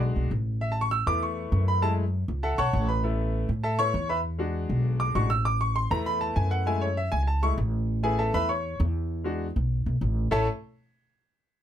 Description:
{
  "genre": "latin, salsa",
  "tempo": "198 BPM",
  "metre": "4/4",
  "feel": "straight",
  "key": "A major",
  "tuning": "A4 = 440 Hz",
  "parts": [
    { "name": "bright upright piano", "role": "accompaniment", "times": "0.0-10.5 s", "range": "G#3 to E6", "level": "-27 LUFS", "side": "left 1 dB", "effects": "none" },
    { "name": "upright bass", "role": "bass", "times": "0.0-10.5 s", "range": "A1 to A2", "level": "-26 LUFS", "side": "equal", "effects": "none" }
  ],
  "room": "little or no reverb",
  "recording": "close, detailed microphones",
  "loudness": "-24 LUFS",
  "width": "side -10 dB against mid",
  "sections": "0.0-10.3 A section; 10.3-11.5 B section",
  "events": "upright piano solo 0.0-10.3",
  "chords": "0.0 E7 (rootless); 0.6 Asus2; 1.8 F#m7; 3.0 Asus2; 4.2 E7; 5.5 Asus2; 6.7 F#m7; 7.9 Asus2; 9.1 E7; 10.3 A5"
}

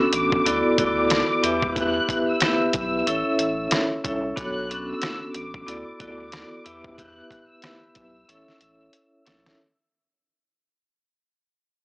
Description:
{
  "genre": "hip hop, boom-bap hip-hop",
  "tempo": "92 BPM",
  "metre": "4/4",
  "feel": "swing 58% on 16ths",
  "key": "unclear",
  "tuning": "A4 = 442 Hz",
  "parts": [
    { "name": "rich studio violin section", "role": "melody", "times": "0.0-8.9 s", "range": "D6 to F#6", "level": "-28 LUFS", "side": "equal", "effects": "high-pass filter, low-pass filter, analog delay" },
    { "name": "vibraphone with hard mallets", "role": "accompaniment", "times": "0.0-9.6 s", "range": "B3 to E5", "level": "-23 LUFS", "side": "equal", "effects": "cassette tape, high-pass filter, low-pass filter" },
    { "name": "saturated sub bass", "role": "bass", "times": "0.1-9.5 s", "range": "A1 to E2", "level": "-38 LUFS", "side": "equal", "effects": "none" },
    { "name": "trip hop sampler-style drum kit", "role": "drums", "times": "0.1-9.6 s", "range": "hi-hat, kick drum, rim click, snare drum", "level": "-26 LUFS", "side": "equal", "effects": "none" }
  ],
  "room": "studio reverb",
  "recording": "dry, gritty hardware recording, cassette tape, small speaker sound",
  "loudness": "-20 LUFS",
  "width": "side -26 dB against mid",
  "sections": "0.0-9.6 A section",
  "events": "fade-out 0.0-9.6; drum fill 8.9-9.6",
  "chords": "0.5 D6; 1.4 Em; 3.1 A; 4.4 Bm7; 5.7 D6; 6.7 Em; 8.3 A"
}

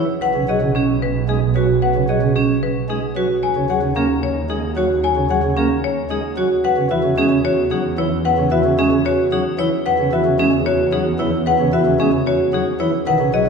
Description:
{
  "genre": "classical, minimalist pattern music",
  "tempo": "112 BPM",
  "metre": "3/4",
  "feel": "straight",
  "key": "unclear",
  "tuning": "A4 = 440 Hz",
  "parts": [
    { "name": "marimba with hard mallets", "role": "melody", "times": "0.0-13.5 s", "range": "G#4 to G#5", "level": "-21 LUFS", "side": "left 7 dB", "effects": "none" },
    { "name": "pipe organ, sparkling flutes", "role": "accompaniment", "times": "0.0-13.4 s", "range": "C#3 to A#3", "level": "-22 LUFS", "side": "left 1 dB", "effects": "none" },
    { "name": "vibraphone with hard mallets", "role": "arpeggios", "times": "0.0-13.5 s", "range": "C#4 to C#5", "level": "-19 LUFS", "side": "right 4 dB", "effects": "none" },
    { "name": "dark studio double bass section", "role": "bass", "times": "0.0-13.5 s", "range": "B1 to E2", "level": "-23 LUFS", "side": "right 4 dB", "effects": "none" }
  ],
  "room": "wet church reverb, RT60 2.9 s",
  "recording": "recorded in a church or concert hall",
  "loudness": "-15 LUFS",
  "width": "side -5 dB against mid",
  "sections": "0.0-13.5 A section",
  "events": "none",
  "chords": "0.2 Bsus2; 3.4 D#m7; 6.6 C#m/E"
}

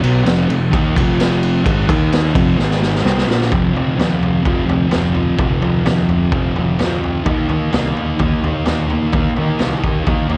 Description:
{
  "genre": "garage rock duo or trio",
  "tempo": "128 BPM",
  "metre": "4/4",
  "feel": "straight",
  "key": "unclear",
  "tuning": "A4 = 440 Hz",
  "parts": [
    { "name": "thick fuzz guitar", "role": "riff", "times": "0.0-10.4 s", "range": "F2 to Eb4", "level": "-19 LUFS", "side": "equal", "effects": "distortion" },
    { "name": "fuzz picked electric bass", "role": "bass", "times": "0.0-10.4 s", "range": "F1 to Eb3", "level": "-24 LUFS", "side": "equal", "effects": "overdrive" },
    { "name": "raw garage drum kit", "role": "drums", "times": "0.0-10.4 s", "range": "kick drum, ride cymbal, snare drum, toms", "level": "-21 LUFS", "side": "equal", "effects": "none" }
  ],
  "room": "light reverb",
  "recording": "cassette tape",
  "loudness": "-16 LUFS",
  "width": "mono",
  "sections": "0.0-3.5 A section; 3.5-10.4 B section",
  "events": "drum fill 2.6-3.5",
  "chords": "0.0 F5; 1.9 Eb5; 2.3 F5; 2.6 Ab5; 3.0 F5; 7.3 Eb5"
}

